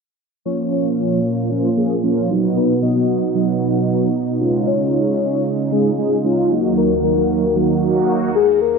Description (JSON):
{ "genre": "pop", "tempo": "114 BPM", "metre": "4/4", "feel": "straight", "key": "Eb minor", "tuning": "A4 = 440 Hz", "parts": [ { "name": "airy dreamy lead", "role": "melody", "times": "0.5-7.5 s", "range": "Bb4 to D#5", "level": "-23 LUFS", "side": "left 7 dB", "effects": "chorus, tape echo" }, { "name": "mellow synth brass", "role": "accompaniment", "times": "0.5-8.3 s", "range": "F3 to Ab4", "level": "-18 LUFS", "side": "right 2 dB", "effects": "chorus" }, { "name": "lush unison pad", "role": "sustained chords", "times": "0.5-8.8 s", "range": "Eb2 to F#4", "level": "-20 LUFS", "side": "right 2 dB", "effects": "chorus" }, { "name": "soft octave-layered synth lead", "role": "melody", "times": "8.3-8.8 s", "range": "Ab4 to Bb4", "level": "-13 LUFS", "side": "left 10 dB", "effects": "chorus, tremolo" } ], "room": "wet echo chamber reverb, RT60 2.1 s", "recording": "1960s-style stereo, low-pass filter", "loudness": "-15 LUFS", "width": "side -4 dB against mid", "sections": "0.5-8.8 A section", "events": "filter sweep 0.5-8.8", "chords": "0.5 Bbm; 2.3 B; 4.4 Dbadd9; 6.5 Ebm" }